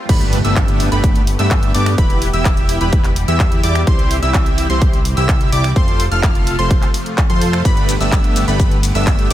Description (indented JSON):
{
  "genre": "EDM, festival progressive house",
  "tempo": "127 BPM",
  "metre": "4/4",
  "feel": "straight",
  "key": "unclear",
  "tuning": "A4 = 440 Hz",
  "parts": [
    { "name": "lush unison pad", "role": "sustained chords", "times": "0.0-9.3 s", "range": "C3 to G4", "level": "-26 LUFS", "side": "equal", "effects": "chorus, phaser, sidechain pumping" },
    { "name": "swell and impact", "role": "sound effects", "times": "0.0-2.0 s", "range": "none", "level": "-26 LUFS", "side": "equal", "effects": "none" },
    { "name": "plucky unison lead", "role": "arpeggios", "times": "0.1-9.3 s", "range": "B5 to F6", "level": "-24 LUFS", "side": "left 1 dB", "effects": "sidechain pumping, ping-pong delay" },
    { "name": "dense compressed supersaw", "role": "riff", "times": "0.1-9.3 s", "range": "A3 to F5", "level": "-21 LUFS", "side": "right 1 dB", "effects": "sidechain pumping, ping-pong delay" },
    { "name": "fat analog bass", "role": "bass", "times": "0.1-9.3 s", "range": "E1 to G2", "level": "-18 LUFS", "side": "equal", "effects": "sidechain pumping" },
    { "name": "big-room dance drum kit", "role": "drums", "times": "0.1-9.3 s", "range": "crash cymbal, finger snaps, handclaps, hi-hat, ride cymbal, shaker", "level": "-24 LUFS", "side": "equal", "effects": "studio reverb" },
    { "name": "electronic kick drum", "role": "drums", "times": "0.1-9.2 s", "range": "none", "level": "-14 LUFS", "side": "equal", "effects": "overdrive, studio reverb" }
  ],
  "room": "little or no reverb",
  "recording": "high-pass filter",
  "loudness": "-12 LUFS",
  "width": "side -13 dB against mid",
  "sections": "0.1-9.3 A section",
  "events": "drop 0.1-9.3; impact 0.1-2.0",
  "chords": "0.1 Gadd9; 2.0 Em; 3.9 C; 5.8 F; 7.7 Gadd9",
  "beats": "| 0.09 0.56 1.04 1.51 | 1.98 2.45 2.93 3.40 | 3.87 4.34 4.82 5.29 | 5.76 6.23 6.71 7.18 | 7.65 8.12 8.60 9.07"
}